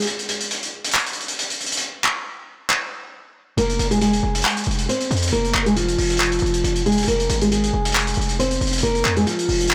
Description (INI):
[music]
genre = hip hop, trap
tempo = 137 BPM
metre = 4/4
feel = half-time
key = F minor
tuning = A4 = 438 Hz
[part]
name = nylon-string guitar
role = melody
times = 0.0, 3.6-9.7 s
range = F3 to C5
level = -23 LUFS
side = equal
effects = tape echo
[part]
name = vintage drum kit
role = drums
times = 0.0-9.7 s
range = handclaps, hi-hat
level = -24 LUFS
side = equal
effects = soft clipping on snare
[part]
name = hard-hitting 808-style bass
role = bass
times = 3.6-9.7 s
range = F1 to F2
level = -26 LUFS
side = equal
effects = none
[sound]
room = light reverb, small room reverb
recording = blown-out, overdriven recording, overdrive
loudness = -21 LUFS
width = mono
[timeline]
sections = 0.0-9.7 A section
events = break 0.0-3.6; hi-hats muted 1.8-3.6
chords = 0.1 N.C.; 3.6 Fm